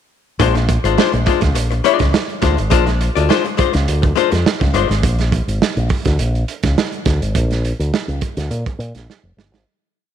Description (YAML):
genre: funk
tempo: 104 BPM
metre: 4/4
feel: straight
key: Bb mixolydian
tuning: A4 = 440 Hz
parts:
  - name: archtop guitar, miked and amplified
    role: accompaniment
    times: 0.4-4.9 s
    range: Ab3 to D5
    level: -18 LUFS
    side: left 11 dB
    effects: none
  - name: fingered electric bass with an envelope filter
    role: bass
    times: 0.4-9.6 s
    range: F1 to Bb2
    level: -17 LUFS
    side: equal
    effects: none
  - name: crunchy breakbeat drum kit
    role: drums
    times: 0.4-9.7 s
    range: hi-hat, kick drum, snare drum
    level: -19 LUFS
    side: right 4 dB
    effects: none
room: light reverb, studio ambience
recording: 1960s-style stereo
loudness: -14 LUFS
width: side -9 dB against mid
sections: 0.4-9.7 groove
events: break 5.0-9.7; fade-out 7.3-9.7; drum fill 9.1-9.7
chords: 0.4 Bb9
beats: | 0.40 0.98 1.56 2.14 | 2.72 3.30 3.88 4.46 | 5.04 5.61 6.19 6.77 | 7.35 7.93 8.51 9.09